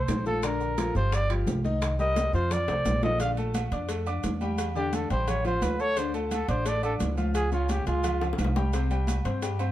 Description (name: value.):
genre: Afro-Cuban jazz.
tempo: 174 BPM.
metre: 4/4.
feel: straight.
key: Bb major.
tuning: A4 = 441 Hz.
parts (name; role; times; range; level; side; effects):
breathy trumpet; melody; 0.0-8.3 s; F4 to F5; -29 LUFS; equal; none.
warm concert grand piano; accompaniment; 0.0-9.7 s; C3 to D6; -32 LUFS; left 3 dB; none.
upright bass; bass; 0.0-9.7 s; G1 to G2; -29 LUFS; equal; none.
bongos and cowbell; percussion; 0.1-9.6 s; none; -38 LUFS; left 5 dB; none.
congas; percussion; 0.1-9.7 s; none; -34 LUFS; left 1 dB; none.
maracas; percussion; 0.1-9.7 s; none; -46 LUFS; right 5 dB; none.
timbales and agogo bells; percussion; 0.1-9.7 s; none; -37 LUFS; right 7 dB; none.
room: light reverb.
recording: dark, warm production.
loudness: -25 LUFS.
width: side -13 dB against mid.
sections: 0.0-3.2 A section; 3.2-9.7 A section.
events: trumpet solo 0.0-9.7; drum fill 2.2-3.2, 8.2-8.7.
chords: 0.4 Bbmaj7; 1.1 Ebmaj13/G; 1.8 Cm7; 2.5 F; 3.2 Bbmaj7; 4.6 C69; 5.3 A7alt; 6.0 Dm; 7.3 Db; 8.7 C5.